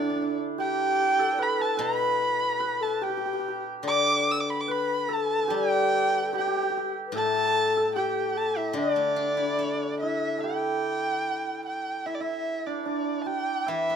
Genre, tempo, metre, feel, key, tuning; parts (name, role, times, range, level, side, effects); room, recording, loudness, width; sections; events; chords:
chinese traditional, Chinese chamber ensemble; 73 BPM; 2/4; rubato; D zhi mode; A4 = 436 Hz
dark erhu; melody; 0.0-14.0 s; D5 to E6; -27 LUFS; right 2 dB
hammered dulcimer; second line; 0.0-14.0 s; D4 to D5; -30 LUFS; right 4 dB
low xiao; second line; 0.0-10.0 s; D4 to D5; -30 LUFS; left 9 dB
steel-string zither; accompaniment; 0.0-14.0 s; A2 to A4; -32 LUFS; left 4 dB
light reverb; close, detailed microphones; -24 LUFS; side -7 dB against mid
0.0-10.4 A section; 10.4-14.0 B section